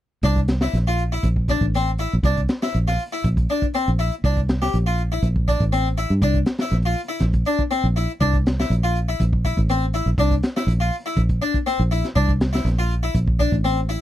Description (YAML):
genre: afrobeat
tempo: 121 BPM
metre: 4/4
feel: straight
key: C mixolydian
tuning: A4 = 440 Hz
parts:
  - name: harpsichord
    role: arpeggios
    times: 0.2-14.0 s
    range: C4 to G4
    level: -24 LUFS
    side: left 2 dB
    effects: none
  - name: fingered electric bass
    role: bass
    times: 0.2-14.0 s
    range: A1 to G2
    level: -20 LUFS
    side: equal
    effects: none
  - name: crunchy breakbeat drum kit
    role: drums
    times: 0.2-14.0 s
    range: hi-hat, kick drum, snare drum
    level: -23 LUFS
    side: equal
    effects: none
room: little or no reverb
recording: dry, close 1970s-style studio recording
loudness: -18 LUFS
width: side -13 dB against mid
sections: 0.2-14.0 A section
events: none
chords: 0.2 C9; 1.2 Bbmaj9#11; 2.2 C9; 3.2 Bbadd9; 4.2 C9; 5.2 Bbmaj9#11; 6.2 C9; 7.2 Bbadd9; 8.2 C9; 9.2 Bbsus2; 10.2 C9; 11.2 Bbadd9; 12.2 C9; 13.2 Bbmaj9#11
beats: | 0.24 0.74 1.24 1.74 | 2.24 2.74 3.24 3.74 | 4.24 4.73 5.23 5.73 | 6.22 6.72 7.22 7.71 | 8.21 8.70 9.20 9.69 | 10.19 10.68 11.17 11.67 | 12.16 12.66 13.15 13.64